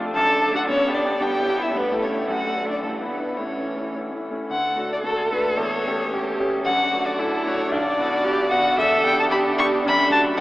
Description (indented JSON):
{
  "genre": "quick classical-period movement for piano quartet",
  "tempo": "112 BPM",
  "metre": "2/4",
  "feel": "straight",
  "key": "D major",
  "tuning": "A4 = 440 Hz",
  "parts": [
    { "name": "clear concert grand piano", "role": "accompaniment", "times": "0.0-10.4 s", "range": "B1 to A4", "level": "-26 LUFS", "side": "left 1 dB", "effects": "none" },
    { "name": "warm viola", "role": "accompaniment", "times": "0.0-10.4 s", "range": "E3 to D4", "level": "-31 LUFS", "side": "right 1 dB", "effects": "none" },
    { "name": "rich violin", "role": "melody", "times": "0.1-10.4 s", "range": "A4 to C#6", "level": "-23 LUFS", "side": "left 1 dB", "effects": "none" },
    { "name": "clear cello", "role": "second line", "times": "0.2-10.4 s", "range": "A3 to A4", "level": "-25 LUFS", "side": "right 2 dB", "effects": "none" }
  ],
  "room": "wet huge ambient reverb, RT60 9.2 s",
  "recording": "in a vast, echoing space, AM radio sound",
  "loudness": "-19 LUFS",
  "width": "side -17 dB against mid",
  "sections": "0.0-4.5 A section; 4.5-10.4 B section",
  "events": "none",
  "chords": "0.2 D/F#; 0.7 G; 1.2 Em/G; 1.7 A7/G; 2.3 D/F#; 2.8 Em7/G; 3.4 A; 4.5 D; 5.6 A7/E; 6.7 D/F#; 7.7 Bm; 8.8 Em7; 9.8 D/F#"
}